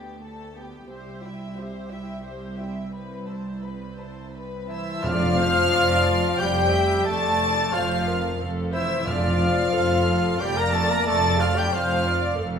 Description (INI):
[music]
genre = cinematic, emotional film score for orchestra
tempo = 90 BPM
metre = 3/4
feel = rubato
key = unclear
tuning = A4 = 441 Hz
[part]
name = warm symphonic violin section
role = melody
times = 0.0-12.4 s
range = E5 to Bb6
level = -30 LUFS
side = left 2 dB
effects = none
[part]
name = rich studio violin section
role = second line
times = 0.0-12.4 s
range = G4 to Bb5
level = -31 LUFS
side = left 1 dB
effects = none
[part]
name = dark studio viola section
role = accompaniment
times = 0.0-12.6 s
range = A3 to E5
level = -32 LUFS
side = equal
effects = none
[part]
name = dark chamber double bass section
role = bass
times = 0.0-12.6 s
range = F1 to D2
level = -30 LUFS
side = right 2 dB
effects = none
[part]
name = warm symphonic cello section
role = bass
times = 0.0-12.6 s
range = C2 to F2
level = -30 LUFS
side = right 3 dB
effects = none
[part]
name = bright large flute ensemble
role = second line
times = 4.7-12.4 s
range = E5 to Bb5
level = -31 LUFS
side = left 1 dB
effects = none
[part]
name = mellow cor anglais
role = second line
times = 4.7-12.4 s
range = E4 to Bb4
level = -29 LUFS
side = right 2 dB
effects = none
[part]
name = mellow French horn section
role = sustained chords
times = 4.7-12.4 s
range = E3 to Bb3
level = -26 LUFS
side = left 4 dB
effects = none
[part]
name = timpani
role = percussion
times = 5.0-6.0, 9.1-10.0 s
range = F2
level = -33 LUFS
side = equal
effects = none
[sound]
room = wet scoring stage reverb, RT60 1.6 s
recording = minimal, uncompressed stereo recording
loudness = -20 LUFS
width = side -7 dB against mid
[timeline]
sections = 0.0-5.0 A section; 5.0-12.6 B section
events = none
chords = 0.0 Gadd9/D; 0.9 C; 2.9 Amadd9/C; 5.0 Dm/F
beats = 0.25 | 0.91 1.57 2.25 | 2.94 3.65 4.34 | 5.04 5.73 6.41 | 7.07 7.74 8.41 | 9.08 9.75 10.42 | 11.08 11.74 12.39